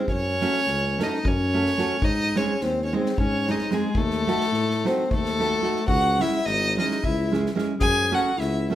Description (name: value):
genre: balkan folk, Balkan wedding band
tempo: 218 BPM (eighths)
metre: 7/8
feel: straight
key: C# harmonic minor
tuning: A4 = 440 Hz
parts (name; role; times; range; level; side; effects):
- rich violin; melody; 0.0-8.8 s; G#4 to G#5; -25 LUFS; right 1 dB; none
- warm clarinet; second line; 0.0-8.8 s; G#3 to G#4; -29 LUFS; left 5 dB; none
- nylon-string guitar; accompaniment; 0.0-8.8 s; G#3 to A4; -28 LUFS; right 3 dB; none
- mellow tuba; bass; 0.1-8.7 s; G#1 to A2; -28 LUFS; equal; none
- unplugged drum kit; percussion; 0.1-8.5 s; kick drum, snare drum; -29 LUFS; equal; none
room: moderate recital hall reverb, RT60 1.4 s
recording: recorded in a church or concert hall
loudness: -21 LUFS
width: side -12 dB against mid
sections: 0.0-8.8 A section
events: none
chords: 0.1 F#m; 2.0 G#; 3.9 D#dim; 5.9 C#m; 7.8 F#m